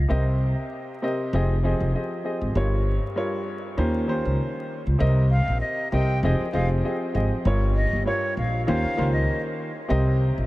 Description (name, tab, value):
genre	hip hop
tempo	98 BPM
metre	4/4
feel	swing 55% on 16ths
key	unclear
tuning	A4 = 442 Hz
part	upright bass	bass	0.0-10.5 s	F1 to Eb2	-22 LUFS	equal	none
part	warm upright piano	accompaniment	0.1-10.5 s	G2 to Eb5	-26 LUFS	equal	cassette tape, high-pass filter, low-pass filter
part	breathy silver concert flute	melody	5.3-9.4 s	Db5 to G5	-31 LUFS	equal	high-pass filter, low-pass filter, diffuse ambient delay
room	light reverb, small room ambience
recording	vinyl crackle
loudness	-21 LUFS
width	side -18 dB against mid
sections	0.0-5.0 A section; 5.0-10.5 B section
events	none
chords	0.1 Cm7; 1.3 Fm9; 2.6 Gm7b5; 3.8 Eb13; 5.0 Cm7; 6.2 Fm9; 7.5 Gm7b5; 8.7 Eb13; 9.9 Cm7